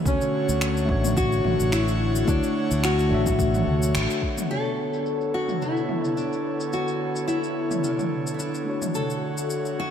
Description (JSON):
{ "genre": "sunset chillout", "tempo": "108 BPM", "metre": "4/4", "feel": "swing 55% on 16ths", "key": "B minor", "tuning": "A4 = 440 Hz", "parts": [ { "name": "mellow tine electric piano", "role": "accompaniment", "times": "0.0-9.9 s", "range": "D3 to E5", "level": "-30 LUFS", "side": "moving between left 4 dB and right 3 dB", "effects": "medium stereo tremolo, auto-pan, low-pass filter, diffuse ambient delay, shimmer reverb" }, { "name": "airy breathy pad", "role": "sustained chords", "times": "0.0-9.9 s", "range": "D3 to C#5", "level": "-29 LUFS", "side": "equal", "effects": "chorus, shimmer reverb" }, { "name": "nylon-string guitar", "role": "melody", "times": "0.1-9.9 s", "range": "C#4 to A4", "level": "-27 LUFS", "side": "left 2 dB", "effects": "diffuse ambient delay, shimmer reverb" }, { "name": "fingered electric bass", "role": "bass", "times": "0.1-4.1 s", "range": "A1 to D2", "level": "-24 LUFS", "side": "equal", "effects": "none" }, { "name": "deep house drum kit", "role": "drums", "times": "0.1-9.8 s", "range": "finger snaps, shaker, toms", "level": "-30 LUFS", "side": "right 2 dB", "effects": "low-pass filter on perc, low-pass filter on snare, low-pass filter on toms, low-pass filter on room" }, { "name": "electronic kick drum", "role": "drums", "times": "0.1-4.3 s", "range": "none", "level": "-27 LUFS", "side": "equal", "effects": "none" } ], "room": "wet plate reverb, RT60 2.6 s", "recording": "dreamy mix soaked in reverb", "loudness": "-22 LUFS", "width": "side -8 dB against mid", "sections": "0.0-4.5 A section; 4.5-9.9 B section", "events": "band accent 3.9; filter sweep on drum 4.5-9.9; filter sweep on tine electric piano 4.5-9.9; filter sweep on analog synth pad 4.5-9.9", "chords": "0.0 Dmaj7; 4.5 Bm9; 8.7 Dmaj7" }